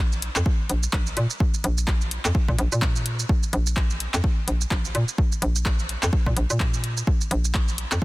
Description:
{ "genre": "minimal techno", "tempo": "127 BPM", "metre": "4/4", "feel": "swing 58% on 16ths", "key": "unclear", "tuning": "A4 = 440 Hz", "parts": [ { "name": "hollow knocking FM bass", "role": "bass", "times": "0.0-8.0 s", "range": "Bb1 to Bb2", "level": "-24 LUFS", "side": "equal", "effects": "tube saturation, sidechain pumping" }, { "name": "punchy analog drum machine", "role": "drums", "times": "0.1-8.0 s", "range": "handclaps, hi-hat, shaker", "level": "-28 LUFS", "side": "right 1 dB", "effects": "overdrive" }, { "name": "electronic kick drum", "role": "drums", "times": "0.5-8.0 s", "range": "none", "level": "-22 LUFS", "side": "equal", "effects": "overdrive" } ], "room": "digital ambience", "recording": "dense, heavily limited modern master", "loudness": "-21 LUFS", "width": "side -20 dB against mid", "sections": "0.0-8.0 A section", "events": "none", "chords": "none" }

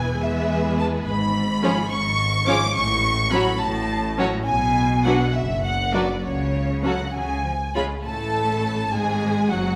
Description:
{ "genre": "quick classical-period movement for string orchestra", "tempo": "69 BPM (dotted quarters)", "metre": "6/8", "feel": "rubato", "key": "F# minor", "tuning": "A4 = 439 Hz", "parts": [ { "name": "dark studio violin section", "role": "melody", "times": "0.0-9.8 s", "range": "C#5 to D6", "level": "-27 LUFS", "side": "equal", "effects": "none" }, { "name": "rich studio violin section", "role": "second line", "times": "0.0-9.8 s", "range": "E#4 to C#5", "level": "-32 LUFS", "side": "equal", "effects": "none" }, { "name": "rich studio viola section", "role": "accompaniment", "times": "0.0-9.8 s", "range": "E3 to D4", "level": "-28 LUFS", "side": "equal", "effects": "none" }, { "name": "rich studio cello section", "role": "bass", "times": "0.0-9.8 s", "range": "E2 to E#3", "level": "-29 LUFS", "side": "equal", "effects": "none" }, { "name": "rich studio double bass section", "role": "bass", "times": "0.0-9.8 s", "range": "E1 to E2", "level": "-30 LUFS", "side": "equal", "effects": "none" } ], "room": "wet scoring stage reverb, RT60 1.7 s", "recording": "none", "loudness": "-22 LUFS", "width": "mono", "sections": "0.0-8.1 A section; 8.1-9.8 B section", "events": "none", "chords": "0.0 E; 1.1 C#7/G#; 2.8 F#m/A; 4.5 Bm; 6.2 F#5/C#; 7.1 C#5; 8.1 F#m/A" }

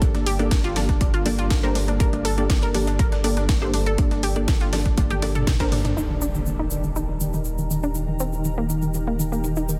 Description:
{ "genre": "progressive house", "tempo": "121 BPM", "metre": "4/4", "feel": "straight", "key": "unclear", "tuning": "A4 = 440 Hz", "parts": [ { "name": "shimmering ambient pad", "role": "sustained chords", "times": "0.0-9.8 s", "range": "Eb3 to Bb4", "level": "-34 LUFS", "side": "equal", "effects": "chorus, built-in reverb, sidechain pumping" }, { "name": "analog pluck", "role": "arpeggios", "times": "0.0-9.8 s", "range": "Eb3 to Bb4", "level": "-30 LUFS", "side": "equal", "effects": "chorus, sidechain pumping, tape echo" }, { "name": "unison pluck", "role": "stabs", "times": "0.0-5.7 s", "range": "Bb3 to D5", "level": "-31 LUFS", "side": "equal", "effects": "cassette tape, sidechain pumping, tape echo" }, { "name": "saturated sub bass", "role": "bass", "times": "0.0-9.8 s", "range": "Eb1 to G1", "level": "-28 LUFS", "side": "equal", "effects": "sidechain pumping" }, { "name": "breakbeat sampler-style drum kit", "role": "drums", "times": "0.0-6.0 s", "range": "hi-hat, snare drum", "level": "-41 LUFS", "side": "equal", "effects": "none" }, { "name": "electronic kick drum", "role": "drums", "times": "0.0-5.7 s", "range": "none", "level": "-23 LUFS", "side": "equal", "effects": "studio ambience" }, { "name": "house drum kit", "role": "drums", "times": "0.0-9.8 s", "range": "crash cymbal, hi-hat, snare drum, toms", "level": "-32 LUFS", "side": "equal", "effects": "low-pass filter on hats, studio ambience, low-pass filter on snare, low-pass filter on toms, low-pass filter on cymbals" }, { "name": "congas", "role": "percussion", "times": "0.1-5.8 s", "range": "none", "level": "-36 LUFS", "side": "equal", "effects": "sidechain pumping on perc, studio ambience" }, { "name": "egg shaker", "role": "percussion", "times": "6.0-9.8 s", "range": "none", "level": "-37 LUFS", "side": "equal", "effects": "none" }, { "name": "impact", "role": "sound effects", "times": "6.0-8.0 s", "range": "none", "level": "-34 LUFS", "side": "equal", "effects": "none" } ], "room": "light reverb, digital ambience", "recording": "dense, heavily limited modern master", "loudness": "-22 LUFS", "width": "mono", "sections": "0.0-6.0 A section; 6.0-9.8 B section", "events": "drum fill 5.0-6.0; band accent 5.5; impact 6.0-8.0; filter sweep on drum 6.0-9.8; filter sweep on synth arpeggio sound 6.0-9.8", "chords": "0.0 Gmadd9; 6.0 Eb" }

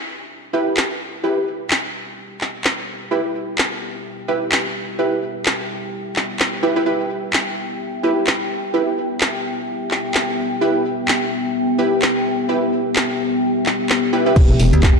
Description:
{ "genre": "bass house", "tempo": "128 BPM", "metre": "4/4", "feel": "swing 57% on 16ths", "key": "E minor", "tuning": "A4 = 440 Hz", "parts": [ { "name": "deep dark ambient pad", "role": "texture", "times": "0.1-15.0 s", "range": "B3 to G5", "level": "-23 LUFS", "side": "left 1 dB", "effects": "chorus, built-in reverb, sidechain pumping" }, { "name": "orchestra-hit-like synth stab", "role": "stabs", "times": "0.5-14.3 s", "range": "E4 to B4", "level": "-21 LUFS", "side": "right 1 dB", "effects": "built-in reverb, sidechain pumping, digital delay" }, { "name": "garage drum kit", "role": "drums", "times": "0.8-14.9 s", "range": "crash cymbal, handclaps, hi-hat", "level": "-21 LUFS", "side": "equal", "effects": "none" }, { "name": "metallic wobble bass", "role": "bass", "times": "14.4-14.7 s", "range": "E1", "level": "-16 LUFS", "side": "equal", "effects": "distortion, chorus, overdrive, sidechain pumping" }, { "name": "electronic kick drum", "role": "drums", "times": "14.4-14.9 s", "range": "none", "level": "-12 LUFS", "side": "equal", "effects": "none" }, { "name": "impact", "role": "sound effects", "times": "14.4-15.0 s", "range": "none", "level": "-22 LUFS", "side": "equal", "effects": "none" }, { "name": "metallic FM bass", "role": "bass", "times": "14.7-15.0 s", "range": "E1 to D2", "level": "-16 LUFS", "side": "equal", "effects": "tube saturation, sidechain pumping" } ], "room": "moderate lush hall reverb, RT60 2.0 s", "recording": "dark, warm production, lossy compression artefacts", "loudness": "-17 LUFS", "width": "side -5 dB against mid", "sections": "0.0-14.4 A section", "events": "impact 14.4-15.0", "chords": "0.0 Em" }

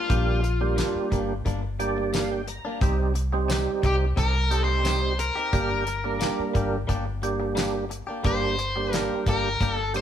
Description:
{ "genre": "straight-eighth soul blues", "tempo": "88 BPM", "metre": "4/4", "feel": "straight", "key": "G minor", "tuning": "A4 = 440 Hz", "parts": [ { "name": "crunchy overdriven guitar", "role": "melody", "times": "0.0-10.0 s", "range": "F4 to D5", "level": "-27 LUFS", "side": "left 3 dB", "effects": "spring reverb" }, { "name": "direct-recorded clean electric guitar", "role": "stabs", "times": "0.0-10.0 s", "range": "G2 to G4", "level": "-34 LUFS", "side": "left 3 dB", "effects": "spring reverb" }, { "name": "percussive tonewheel organ", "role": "accompaniment", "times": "0.1-10.0 s", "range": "G3 to Bb5", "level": "-28 LUFS", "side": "right 4 dB", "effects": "overdrive, chorus vibrato, slow rotary speaker" }, { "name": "vintage muted fingered electric bass", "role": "bass", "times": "0.1-10.0 s", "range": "G1 to C2", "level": "-27 LUFS", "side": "equal", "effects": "none" }, { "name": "damped 70s drum kit", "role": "drums", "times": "0.1-10.0 s", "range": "hi-hat, kick drum, snare drum, tambourine", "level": "-28 LUFS", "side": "equal", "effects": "none" } ], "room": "moderate studio reverb, RT60 0.7 s", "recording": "band playing live in one room", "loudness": "-23 LUFS", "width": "side -10 dB against mid", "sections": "0.0-10.0 A section", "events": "tonewheel organ fill 1.5-2.8", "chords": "0.0 Gm; 2.8 Cm; 5.5 Gm" }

